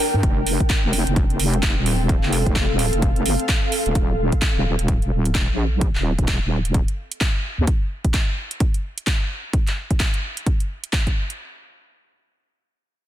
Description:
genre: bass house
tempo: 129 BPM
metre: 4/4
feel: swing 60% on 16ths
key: unclear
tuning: A4 = 437 Hz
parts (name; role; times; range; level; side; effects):
- house drum kit; drums; 0.0-11.4 s; handclaps, hi-hat; -26 LUFS; right 2 dB; none
- ethereal airy pad; texture; 0.0-4.0 s; C4 to G5; -26 LUFS; equal; ensemble chorus, built-in reverb, tremolo, sidechain pumping
- wobble bass; bass; 0.1-7.7 s; Eb1 to G2; -21 LUFS; equal; chorus, overdrive, sidechain pumping
- electronic kick drum; drums; 0.2-11.1 s; none; -20 LUFS; equal; none
room: digital ambience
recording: dense, heavily limited modern master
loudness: -18 LUFS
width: side -12 dB against mid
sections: 0.0-11.4 A section; 11.4-13.1 B section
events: filter sweep on wobble bass 0.0-7.7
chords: 0.2 F; 4.0 Eb5; 7.7 N.C.

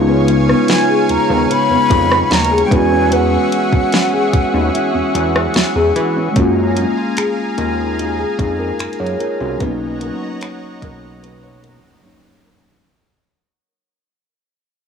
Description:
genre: contemporary R&B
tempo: 74 BPM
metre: 4/4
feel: straight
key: F# major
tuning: A4 = 438 Hz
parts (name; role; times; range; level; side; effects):
- mellow tine electric piano; accompaniment; 0.0-12.9 s; F#3 to C#5; -19 LUFS; equal; medium stereo tremolo
- lush unison pad; sustained chords; 0.0-12.8 s; G#4 to C#6; -23 LUFS; equal; chorus
- nylon-string guitar; arpeggios; 0.0-13.4 s; C#3 to C#5; -20 LUFS; left 1 dB; analog delay
- fat analog bass; bass; 0.0-11.8 s; B1 to E3; -20 LUFS; equal; none
- smooth R&B drum kit; drums; 0.3-11.8 s; finger snaps, hi-hat, kick drum, rim click, snare drum; -18 LUFS; equal; none
- breathy jazz flute; melody; 0.7-5.6 s; F#5 to B5; -18 LUFS; left 2 dB; analog delay
room: little or no reverb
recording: dry, gritty hardware recording, cassette tape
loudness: -13 LUFS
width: side -6 dB against mid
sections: 0.0-6.4 A section; 6.4-12.8 B section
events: fade-out 6.4-12.8; break 12.0-12.8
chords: 0.0 C#7; 2.7 E69; 6.4 F#maj9; 9.6 Bmaj9

